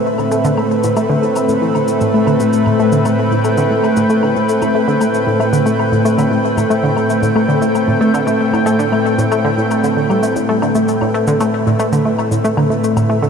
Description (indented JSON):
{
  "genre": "ambient, sequencer-driven space music",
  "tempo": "115 BPM",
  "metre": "4/4",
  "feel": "straight",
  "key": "A minor",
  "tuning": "A4 = 440 Hz",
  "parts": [
    { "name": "lush unison pad", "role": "sustained chords", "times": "0.0-13.3 s", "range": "A2 to G5", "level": "-14 LUFS", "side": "equal", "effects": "chorus" },
    { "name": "analog pluck", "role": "riff", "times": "0.2-13.3 s", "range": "A2 to A3", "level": "-16 LUFS", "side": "left 1 dB", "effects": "chorus, ping-pong delay" },
    { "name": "woodblock and cabasa", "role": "percussion", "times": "0.2-13.1 s", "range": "none", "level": "-30 LUFS", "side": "left 4 dB", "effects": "ping-pong delay" }
  ],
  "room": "wet huge ambient reverb, RT60 7.7 s",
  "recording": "dreamy mix soaked in reverb",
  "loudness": "-12 LUFS",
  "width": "side -6 dB against mid",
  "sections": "0.0-13.3 A section",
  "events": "filter sweep on synth arpeggio sound 0.0-13.3",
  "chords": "0.0 Amadd9"
}